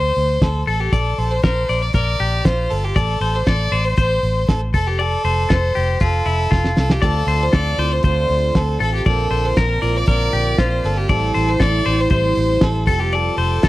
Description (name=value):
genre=jangly indie pop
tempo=118 BPM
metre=4/4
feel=straight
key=D minor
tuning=A4 = 436 Hz
part: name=clear violin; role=melody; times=0.0-13.7 s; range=G4 to D5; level=-22 LUFS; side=right 1 dB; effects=none
part: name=clean electric guitar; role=arpeggios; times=0.0-13.7 s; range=E4 to D5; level=-23 LUFS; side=left 6 dB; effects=spring reverb
part: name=vintage muted fingered electric bass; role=bass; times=0.0-13.7 s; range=F1 to D2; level=-20 LUFS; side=equal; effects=none
part: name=cloth-damped thuddy drum kit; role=drums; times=0.2-13.7 s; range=hi-hat, kick drum, snare drum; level=-17 LUFS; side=equal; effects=none
part: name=picked plugged-in twelve-string acoustic guitar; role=accompaniment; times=7.0-13.7 s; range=A2 to A4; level=-24 LUFS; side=right 3 dB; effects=none
room=small room ambience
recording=dry, close 1970s-style studio recording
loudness=-15 LUFS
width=side -17 dB against mid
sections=0.0-13.7 A section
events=drum fill 6.5-7.0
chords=0.0 D5; 0.9 Bbadd9; 3.0 Am; 4.7 F; 7.0 Dm7; 9.1 Bbadd9; 11.1 Am7; 12.9 Fadd9